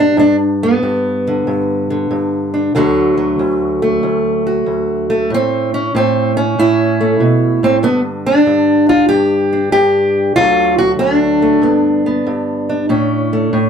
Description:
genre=acoustic country blues, solo or duo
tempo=95 BPM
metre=4/4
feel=swing 67% on 8ths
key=unclear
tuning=A4 = 445 Hz
part: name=fingerpicked steel-string acoustic guitar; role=solo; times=0.0-13.7 s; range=D2 to G4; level=-12 LUFS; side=equal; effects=none
room=moderate small room reverb, RT60 0.5 s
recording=none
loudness=-12 LUFS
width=side -7 dB against mid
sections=0.0-13.7 A section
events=none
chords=0.0 G; 2.7 D; 5.3 A; 7.8 G5; 10.4 D; 11.6 G; 12.9 A

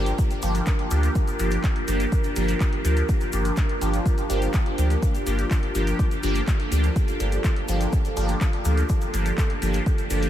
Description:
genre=dub techno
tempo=124 BPM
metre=4/4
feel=straight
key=G minor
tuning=A4 = 439 Hz
part: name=dark analog pad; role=sustained chords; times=0.0-10.3 s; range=D4 to Bb4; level=-31 LUFS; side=right 1 dB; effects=chorus, sidechain pumping
part: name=resonant sweep polysynth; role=stabs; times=0.0-10.3 s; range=F3 to G4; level=-28 LUFS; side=left 1 dB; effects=chorus, phaser, cassette tape, sidechain pumping, dub echo
part: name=pure sine sub bass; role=bass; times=0.0-10.3 s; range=G1 to D2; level=-23 LUFS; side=equal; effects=tube saturation, sidechain pumping
part: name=flickering grainy texture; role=texture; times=0.0-10.3 s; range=Bb3 to Bb4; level=-38 LUFS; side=right 1 dB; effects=built-in reverb, sidechain pumping
part: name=punchy analog drum machine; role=drums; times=0.1-10.3 s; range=handclaps, hi-hat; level=-36 LUFS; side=left 1 dB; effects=dub echo
part: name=tube shaker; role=percussion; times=0.1-10.3 s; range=none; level=-40 LUFS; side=left 4 dB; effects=none
part: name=electronic kick drum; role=drums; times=0.2-10.0 s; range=none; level=-22 LUFS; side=equal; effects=overdrive
room=light reverb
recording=none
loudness=-21 LUFS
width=side -12 dB against mid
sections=0.0-10.3 A section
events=none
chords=0.0 Gm7

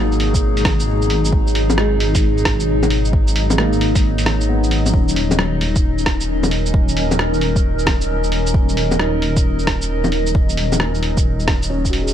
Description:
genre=future garage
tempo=133 BPM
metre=4/4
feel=swing 64% on 16ths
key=unclear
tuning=A4 = 440 Hz
part: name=felt-muted upright piano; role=accompaniment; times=0.0-12.1 s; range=F#3 to G#4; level=-26 LUFS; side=right 2 dB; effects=sidechain pumping, analog delay
part: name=warbly tape-like pad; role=sustained chords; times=0.0-12.1 s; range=B2 to D#5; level=-21 LUFS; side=left 2 dB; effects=chorus, built-in reverb, phaser, sidechain pumping
part: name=dark detuned saw bass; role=bass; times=0.0-12.1 s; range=D#1 to G#1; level=-19 LUFS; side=equal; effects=tube saturation, sidechain pumping
part: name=lo-fi sampler-style drum kit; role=drums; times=0.1-12.1 s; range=bongos, hi-hat, rim click, shaker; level=-21 LUFS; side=equal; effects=overdrive
part: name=electronic kick drum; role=drums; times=0.3-11.9 s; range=none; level=-18 LUFS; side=equal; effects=overdrive
room=digital ambience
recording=none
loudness=-15 LUFS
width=side -10 dB against mid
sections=0.0-4.9 A section; 4.9-12.1 A section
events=kick drops out 4.0-4.9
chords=0.0 G#m7; 4.9 D#m7

